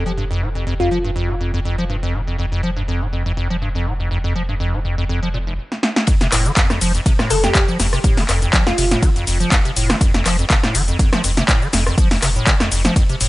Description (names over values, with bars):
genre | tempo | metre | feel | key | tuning
acid house | 122 BPM | 4/4 | swing 54% on 16ths | F mixolydian | A4 = 440 Hz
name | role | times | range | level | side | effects
acid bass, square | riff | 0.0-13.3 s | F1 to F3 | -21 LUFS | equal | tube saturation, analog chorus, vintage 12-bit sampler grit, sidechain pumping, analog delay
warm sub bass | bass | 0.0-13.3 s | F1 | -22 LUFS | equal | sidechain pumping
glassy wavetable pluck | melody | 0.8-1.3, 7.3-9.2 s | F4 to A4 | -24 LUFS | equal | chorus, cassette tape, analog delay
punchy analog drum machine | drums | 5.7-13.3 s | handclaps, hi-hat, ride cymbal, rim click, shaker, snare drum | -19 LUFS | equal | overdrive
electronic kick drum | drums | 6.1-13.1 s | none | -15 LUFS | equal | overdrive
warm soul drum kit | drums | 6.1-13.3 s | ride cymbal, snare drum | -33 LUFS | left 3 dB | none
room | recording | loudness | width
light reverb, digital ambience | nothing above 10.9 kHz | -15 LUFS | side -18 dB against mid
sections
0.0-6.1 A section; 6.1-13.3 B section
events
drum fill 5.7-6.1; drop 6.1-13.3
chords
0.0 N.C.; 6.1 F5